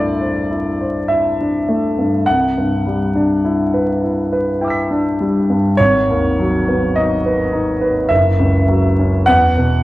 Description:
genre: classical, impressionist solo piano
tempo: 51 BPM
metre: 3/4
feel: rubato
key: unclear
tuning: A4 = 443 Hz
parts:
  - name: clear grand piano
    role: solo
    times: 0.0-9.8 s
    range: F#1 to B6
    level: -14 LUFS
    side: equal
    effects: none
room: wet recital hall reverb, RT60 1.4 s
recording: vinyl crackle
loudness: -14 LUFS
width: side -17 dB against mid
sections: 0.0-9.8 A section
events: none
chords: 0.0 C69; 2.3 Em7/C; 5.8 G#m7; 8.1 F#5; 9.3 E5

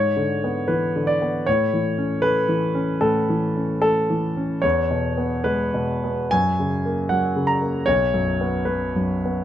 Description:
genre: classical, romantic character piece for solo piano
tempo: 66-79 BPM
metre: 4/4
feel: rubato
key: unclear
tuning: A4 = 439 Hz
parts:
  - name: warm grand piano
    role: solo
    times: 0.0-9.4 s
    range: B1 to A#5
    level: -19 LUFS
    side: equal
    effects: none
room: light reverb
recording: close, detailed microphones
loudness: -19 LUFS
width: side -11 dB against mid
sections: 0.0-9.4 A section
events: none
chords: 0.0 E7/G#; 1.5 A; 4.6 C#m7/E; 6.3 F#; 7.9 B5

